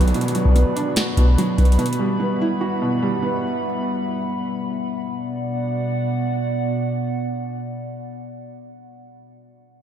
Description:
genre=hip hop, trap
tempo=146 BPM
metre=4/4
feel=half-time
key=B minor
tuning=A4 = 440 Hz
part: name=felt-muted upright piano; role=accompaniment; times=0.0-4.3 s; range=B2 to F#4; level=-23 LUFS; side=right 2 dB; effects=none
part: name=dark analog pad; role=sustained chords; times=0.0-9.1 s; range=B2 to B5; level=-25 LUFS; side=equal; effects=wide subtle chorus
part: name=booming analog drum machine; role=drums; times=0.0-2.0 s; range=hi-hat, kick drum, snare drum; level=-18 LUFS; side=equal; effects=none
part: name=downlifter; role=sound effects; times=0.0-1.8 s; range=none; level=-36 LUFS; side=equal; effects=none
room=wet cathedral reverb, RT60 5.6 s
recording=dreamy mix soaked in reverb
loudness=-19 LUFS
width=side -9 dB against mid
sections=0.0-5.1 A section; 5.1-8.4 B section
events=none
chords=0.0 Bm; 1.8 Emadd9; 5.1 Bm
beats=| 0.14 0.56 0.97 1.38 | 1.79 2.20 2.61 3.02 | 3.43 3.84 4.25 4.67 | 5.08 5.49 5.90 6.31 | 6.72 7.13 7.54 7.95

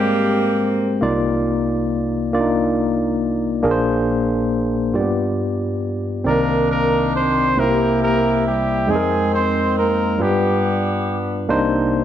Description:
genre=gospel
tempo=46 BPM (dotted quarters)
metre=6/8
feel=straight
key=unclear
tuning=A4 = 439 Hz
part: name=clear horn section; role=melody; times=0.0-1.0, 6.3-11.5 s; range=G3 to C5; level=-19 LUFS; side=right 1 dB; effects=slapback echo
part: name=barky tine electric piano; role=accompaniment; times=0.0-12.0 s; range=Bb1 to G5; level=-18 LUFS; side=left 1 dB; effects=overdrive, medium stereo tremolo
room=moderate echo chamber reverb, RT60 2.5 s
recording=none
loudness=-16 LUFS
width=side -10 dB against mid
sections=0.0-12.0 A section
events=none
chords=0.0 Abmaj9; 1.0 Cm11; 3.6 Bb9; 5.0 G7; 6.3 Cm9; 7.6 C7; 8.9 Fm11; 10.2 G7; 11.5 Cm9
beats=| 1.02 2.33 | 3.65 4.96 | 6.27 7.58 | 8.88 10.19 | 11.50

